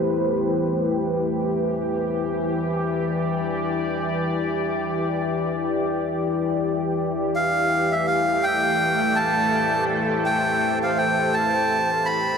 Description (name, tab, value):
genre	ambient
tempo	83 BPM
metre	4/4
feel	swing 59% on 16ths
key	A minor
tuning	A4 = 440 Hz
part	deep dark ambient pad	sustained chords	0.0-12.4 s	E3 to D5	-22 LUFS	left 1 dB	chorus, built-in reverb
part	melodica	melody	7.4-12.4 s	E5 to B5	-20 LUFS	equal	dub echo
room	wet huge ambient reverb, RT60 6.7 s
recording	none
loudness	-20 LUFS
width	side -6 dB against mid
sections	0.0-12.4 A section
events	fade-out 11.2-12.4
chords	0.0 Am9; 1.6 Em7; 7.4 Am7